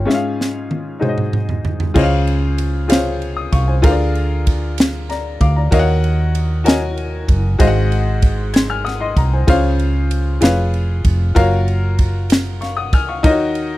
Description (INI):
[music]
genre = slow gospel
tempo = 64 BPM (dotted quarters)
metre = 6/8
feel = straight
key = Db major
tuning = A4 = 440 Hz
[part]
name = clear baby grand piano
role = accompaniment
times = 0.0-13.8 s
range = Ab2 to Ab6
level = -19 LUFS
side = left 2 dB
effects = none
[part]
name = hollow-body short-scale fingered electric bass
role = bass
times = 0.0-13.8 s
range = F1 to Eb2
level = -18 LUFS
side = right 1 dB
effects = none
[part]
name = crisp fusion drum kit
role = drums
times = 0.1-13.7 s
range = crash cymbal, kick drum, ride cymbal, snare drum, toms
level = -16 LUFS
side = equal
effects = none
[sound]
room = little or no reverb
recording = dry, close 1970s-style studio recording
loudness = -14 LUFS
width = side -16 dB against mid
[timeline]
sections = 0.0-2.0 A section; 2.0-13.8 B section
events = break 0.1-2.0; drum fill 0.1-2.0; grand piano fill 8.5-9.5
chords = 0.1 Db/Ab; 1.0 Ab7; 2.0 Dbmaj7; 3.8 Bb7/D; 5.7 Ebm7; 7.6 Ab7; 9.5 Dbmaj7; 10.4 Db7/F; 11.4 Gbmaj7; 13.2 Ebm7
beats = | 0.08 1.02 | 1.96 2.90 | 3.84 4.78 | 5.72 6.66 | 7.60 8.54 | 9.48 10.42 | 11.36 12.30 | 13.24